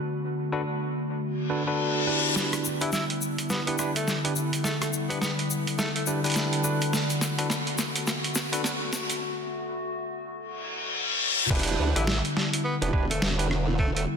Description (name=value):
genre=glitch hop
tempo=105 BPM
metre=4/4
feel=swing 60% on 16ths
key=E minor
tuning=A4 = 440 Hz
part: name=warbly tape-like pad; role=sustained chords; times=0.0-14.2 s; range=D3 to F#4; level=-30 LUFS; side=left 1 dB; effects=chorus, built-in reverb, sidechain pumping
part: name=barky tine electric piano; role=stabs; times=0.5-13.5 s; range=D4 to B4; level=-32 LUFS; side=moving between left 3 dB and right 5 dB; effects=auto-pan, sidechain pumping, low-pass filter, dub echo
part: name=reverse cymbal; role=sound effects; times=1.4-2.4, 10.6-11.5 s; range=none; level=-28 LUFS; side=left 4 dB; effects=none
part: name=boom bap sampler-style drum kit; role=drums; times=2.4-14.1 s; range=crash cymbal, hi-hat, rim click, snare drum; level=-29 LUFS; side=right 1 dB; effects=small room ambience
part: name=egg shaker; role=percussion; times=2.4-9.2 s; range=none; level=-35 LUFS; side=left 6 dB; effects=none
part: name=breathy tenor saxophone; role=melody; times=2.8-6.0, 12.0-14.0 s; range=A3 to E4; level=-34 LUFS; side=right 1 dB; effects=vintage 12-bit sampler grit, low-pass filter, dub echo
part: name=formant-sweep wobble bass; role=bass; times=11.5-14.1 s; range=E1 to D2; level=-28 LUFS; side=right 1 dB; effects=chorus, tube saturation
part: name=electronic kick drum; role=drums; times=11.5-13.9 s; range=none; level=-26 LUFS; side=equal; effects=small room ambience
room=wet lush hall reverb, RT60 2.3 s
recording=dense, heavily limited modern master, high-pass filter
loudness=-24 LUFS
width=side -6 dB against mid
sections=0.0-2.4 A section; 2.4-11.5 B section; 11.5-14.2 C section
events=filter sweep on tine electric piano 0.0-2.4, 2.4-11.5; filter sweep on ambient pad 0.0-2.4; reverse cymbal 1.4-2.4, 10.6-11.5; build-up 2.4-11.5; drum fill 2.4-9.2; filter sweep 2.4-11.5; break 9.2-11.5; drop 11.5-14.2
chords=0.0 Em7; 6.9 Bm7; 11.5 Em7